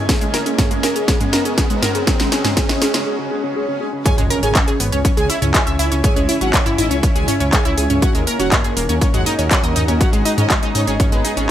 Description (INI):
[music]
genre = melodic techno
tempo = 121 BPM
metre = 4/4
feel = straight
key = C# dorian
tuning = A4 = 444 Hz
[part]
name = soft octave-layered synth lead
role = melody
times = 0.0-11.5 s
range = G#3 to G#4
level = -24 LUFS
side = equal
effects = chorus, phaser, sidechain pumping, digital delay
[part]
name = wide unison pluck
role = arpeggios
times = 0.0-11.4 s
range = G#3 to E6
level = -22 LUFS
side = right 1 dB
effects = sidechain pumping, tape echo
[part]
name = analog drone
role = drone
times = 0.3-3.1 s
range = none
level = barely audible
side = none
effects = none
[part]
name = riser, swell and impact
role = sound effects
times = 0.0-6.0 s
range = none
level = -26 LUFS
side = right 1 dB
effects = none
[part]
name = granular cloud pad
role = texture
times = 0.0-11.5 s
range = B3 to A#5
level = -27 LUFS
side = left 1 dB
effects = built-in reverb, sidechain pumping
[part]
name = electronic kick drum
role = drums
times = 0.1-11.1 s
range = none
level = -17 LUFS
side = equal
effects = overdrive, studio reverb
[part]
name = techno drum kit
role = drums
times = 0.1-11.5 s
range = handclaps, hi-hat, snare drum, toms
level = -20 LUFS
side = equal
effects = overdrive, studio reverb
[part]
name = warm studio violin section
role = second line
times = 4.1-11.5 s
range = G#4 to G#5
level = -27 LUFS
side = equal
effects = sidechain pumping, tape echo
[part]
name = swelling detuned saw bass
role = bass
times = 4.2-11.5 s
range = D#1 to G#2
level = -21 LUFS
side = equal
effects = sidechain pumping
[sound]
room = light reverb, digital ambience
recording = none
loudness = -14 LUFS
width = side -11 dB against mid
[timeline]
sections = 0.0-4.1 A section; 4.1-11.5 B section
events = build-up 0.0-4.1; drum fill 0.0-3.1; riser 0.0-3.1; filter sweep on soft synth lead 0.0-4.1; break 3.1-4.1; swell 3.1-4.1; drop 4.1-11.5; impact 4.1-6.0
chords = 0.1 D#m7; 2.1 G#m; 4.1 C#m; 8.0 D#m7; 10.0 G#m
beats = | 0.09 0.58 1.08 1.58 | 2.07 2.57 3.06 3.56 | 4.06 4.55 5.05 5.54 | 6.04 6.54 7.03 7.53 | 8.02 8.52 9.02 9.51 | 10.01 10.50 11.00 11.49